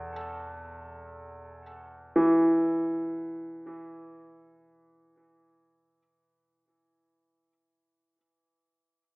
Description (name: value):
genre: dark ambient drone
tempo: free time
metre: none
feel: none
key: unclear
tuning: A4 = 440 Hz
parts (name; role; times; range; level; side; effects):
- bright grand piano; arpeggios; 0.0-8.2 s; E3 to A4; -27 LUFS; equal; tape echo
- deep rumbling drone; drone; 0.0-6.1 s; E2 to B2; -54 LUFS; equal; built-in reverb, lush chorus
room: wet plate reverb, RT60 3.0 s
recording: echo-heavy mix, AM radio sound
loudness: -24 LUFS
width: side -34 dB against mid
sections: 0.0-6.0 A section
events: fade-out 0.0-6.0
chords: 0.0 Esus4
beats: free time